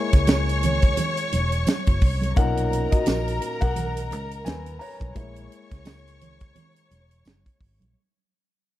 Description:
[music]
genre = lush 1970s-style soul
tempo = 86 BPM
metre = 4/4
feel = swing 58% on 16ths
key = unclear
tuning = A4 = 439 Hz
[part]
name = rich studio string section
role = second line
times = 0.0-7.9 s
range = A#4 to C#6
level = -29 LUFS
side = equal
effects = none
[part]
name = dark concert grand piano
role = accompaniment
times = 0.0-8.0 s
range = A#2 to A#5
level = -30 LUFS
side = left 4 dB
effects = none
[part]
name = vintage muted fingered electric bass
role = bass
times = 0.1-7.9 s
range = E1 to D#2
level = -26 LUFS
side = equal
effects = none
[part]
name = tight funk drum kit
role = drums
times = 0.1-7.9 s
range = hi-hat, kick drum, snare drum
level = -21 LUFS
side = equal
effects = none
[part]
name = congas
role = percussion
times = 0.3-7.9 s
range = none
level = -31 LUFS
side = right 3 dB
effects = none
[part]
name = tambourine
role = percussion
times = 0.3-7.4 s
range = none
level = -45 LUFS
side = right 8 dB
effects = none
[sound]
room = studio reverb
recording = dark, warm production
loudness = -20 LUFS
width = side -14 dB against mid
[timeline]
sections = 0.0-8.0 A section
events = fade-out 0.0-8.0; grand piano solo 0.0-8.0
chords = 0.0 F#7 (rootless); 2.4 Bmaj7; 5.2 F#7/A# (rootless)

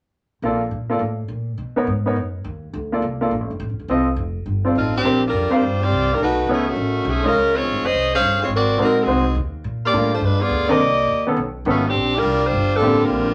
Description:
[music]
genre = jazz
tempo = 208 BPM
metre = 4/4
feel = swing 62% on 8ths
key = Bb major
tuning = A4 = 437 Hz
[part]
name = clear baby grand piano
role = accompaniment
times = 0.4-13.3 s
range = D3 to F5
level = -22 LUFS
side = equal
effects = none
[part]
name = upright bass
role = bass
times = 0.4-13.3 s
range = D1 to B2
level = -27 LUFS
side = equal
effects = none
[part]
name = warm saxophone section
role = melody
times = 4.8-13.3 s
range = D#3 to F5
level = -21 LUFS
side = equal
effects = none
[sound]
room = wet small room reverb, RT60 0.5 s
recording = none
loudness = -20 LUFS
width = mono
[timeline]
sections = 0.4-5.0 A section; 5.0-13.3 B section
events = none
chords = 0.4 Bbmaj7; 1.6 Bmaj9; 2.7 Bbmaj7; 3.9 F7; 5.0 Bb69; 6.2 B9; 7.3 Dbmaj7; 8.5 Ab9; 9.6 Bb6; 10.2 G7b9; 10.8 Cm9; 11.4 B9; 12.0 Bb69

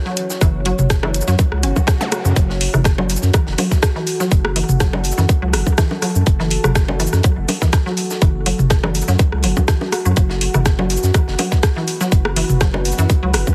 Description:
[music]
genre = minimal techno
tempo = 123 BPM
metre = 4/4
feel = swing 54% on 16ths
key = F# minor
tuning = A4 = 439 Hz
[part]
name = deep dark ambient pad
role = texture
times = 0.0-13.5 s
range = F#4 to C#5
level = -30 LUFS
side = equal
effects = chorus, built-in reverb, sidechain pumping
[part]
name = resonant blip pluck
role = riff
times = 0.1-13.3 s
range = C#3 to F#4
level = -26 LUFS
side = equal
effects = chorus, sidechain pumping, digital delay
[part]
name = tight funk drum kit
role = drums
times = 0.1-13.5 s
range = hi-hat, snare drum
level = -34 LUFS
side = equal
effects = high-pass filter on hats, small room ambience, high-pass filter on snare, high-pass filter on room
[part]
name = garage drum kit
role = drums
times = 0.2-13.5 s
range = cabasa, hi-hat, rim click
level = -26 LUFS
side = equal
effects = small room ambience
[part]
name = saturated sub bass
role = bass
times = 0.4-13.4 s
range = F#1 to F#2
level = -21 LUFS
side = equal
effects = sidechain pumping
[part]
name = electronic kick drum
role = drums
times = 0.4-13.5 s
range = none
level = -17 LUFS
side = equal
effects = small room ambience
[part]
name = techno drum kit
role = percussion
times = 0.4-13.5 s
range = bongos, rim click, toms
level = -24 LUFS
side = equal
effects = overdrive, small room ambience, dub echo
[part]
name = swell and zap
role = sound effects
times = 1.6-2.4 s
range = none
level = -30 LUFS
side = equal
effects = none
[sound]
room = little or no reverb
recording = heavily compressed radio sound, multiband compression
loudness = -17 LUFS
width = mono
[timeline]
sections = 0.0-13.5 A section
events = swell 1.6-2.4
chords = 0.0 F#m

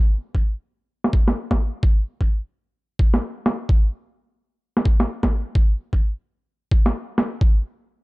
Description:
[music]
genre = UK garage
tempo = 129 BPM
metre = 4/4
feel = swing 62% on 16ths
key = none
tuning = none
[part]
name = electronic kick drum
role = drums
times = 0.3-7.5 s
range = none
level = -17 LUFS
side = equal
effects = overdrive
[part]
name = electronic snare drum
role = drums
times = 1.0-7.3 s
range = none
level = -22 LUFS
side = equal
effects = overdrive, low-pass filter on snare, low-pass filter on room
[sound]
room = little or no reverb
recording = dry, gritty hardware recording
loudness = -19 LUFS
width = side -23 dB against mid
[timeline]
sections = 0.0-8.0 A section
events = none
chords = none

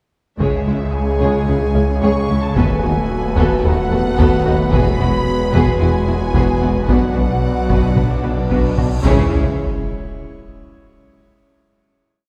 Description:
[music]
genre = cinematic, hybrid orchestral and electronic film score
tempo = 111 BPM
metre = 4/4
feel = straight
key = C# phrygian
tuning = A4 = 441 Hz
[part]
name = rich symphonic violin section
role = melody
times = 0.4-9.3 s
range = C#5 to C#6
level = -30 LUFS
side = equal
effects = none
[part]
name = warm symphonic violin section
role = second line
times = 0.4-9.4 s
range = B3 to C#5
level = -28 LUFS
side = equal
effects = none
[part]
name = rich studio viola section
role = accompaniment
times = 0.4-9.4 s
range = E3 to G#4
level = -27 LUFS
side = equal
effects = none
[part]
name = airy breathy pad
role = sustained chords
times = 0.4-9.3 s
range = F#3 to D5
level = -26 LUFS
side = equal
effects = chorus
[part]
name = clear trombone section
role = sustained chords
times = 0.4-9.3 s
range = C#3 to C#4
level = -29 LUFS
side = equal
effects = none
[part]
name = warm French horn section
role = sustained chords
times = 0.4-9.3 s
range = B3 to B4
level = -28 LUFS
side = equal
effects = none
[part]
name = string-like resonator pluck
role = arpeggios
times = 0.4-8.9 s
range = C#3 to B4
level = -30 LUFS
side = equal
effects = none
[part]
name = clear symphonic double bass section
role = bass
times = 0.4-9.3 s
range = E1 to D#2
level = -25 LUFS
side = equal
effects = none
[part]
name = rich symphonic cello section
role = bass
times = 0.4-9.3 s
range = C#2 to C#3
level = -25 LUFS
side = equal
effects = none
[part]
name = snarling distorted saw bass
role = bass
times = 0.4-9.3 s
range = D#1 to C#2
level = -24 LUFS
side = equal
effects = none
[part]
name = taiko ensemble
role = drums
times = 0.4-10.1 s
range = none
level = -23 LUFS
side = equal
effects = none
[part]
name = cymbal swell and sub drop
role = sound effects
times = 8.9-11.2 s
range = none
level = -28 LUFS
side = equal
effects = none
[sound]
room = wet scoring stage reverb, RT60 1.9 s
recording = heard from further back in the room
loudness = -16 LUFS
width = mono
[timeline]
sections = 0.4-9.0 theme; 9.0-11.2 final chord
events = cymbal swell 8.9; impact 9.0-11.2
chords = 0.4 C#m; 2.6 B7/D#; 4.7 Eadd9; 6.9 Bm; 9.0 C#m

